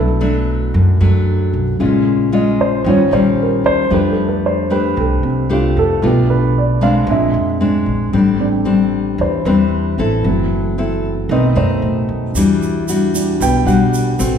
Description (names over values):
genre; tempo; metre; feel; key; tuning
bossa nova; 114 BPM; 4/4; straight; unclear; A4 = 440 Hz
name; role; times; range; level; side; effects
nylon-string guitar; accompaniment; 0.0-14.4 s; F#2 to A4; -16 LUFS; left 3 dB; none
warm grand piano; accompaniment; 0.0-14.4 s; C#3 to G5; -18 LUFS; right 2 dB; none
upright bass; bass; 0.0-14.4 s; F#1 to A2; -19 LUFS; right 1 dB; none
tube shaker; percussion; 12.4-14.4 s; none; -27 LUFS; right 5 dB; none
room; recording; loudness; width
wet recital hall reverb, RT60 1.4 s; recorded in a church or concert hall; -13 LUFS; side -8 dB against mid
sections
0.0-14.4 A section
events
grand piano solo 0.0-14.4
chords
0.0 Bm7; 1.8 A#m7; 2.9 D#9; 3.9 F69; 6.0 Bm7b5; 7.1 A#9; 8.1 Am11; 10.2 F#m7b5; 11.3 B7b9; 12.3 Em9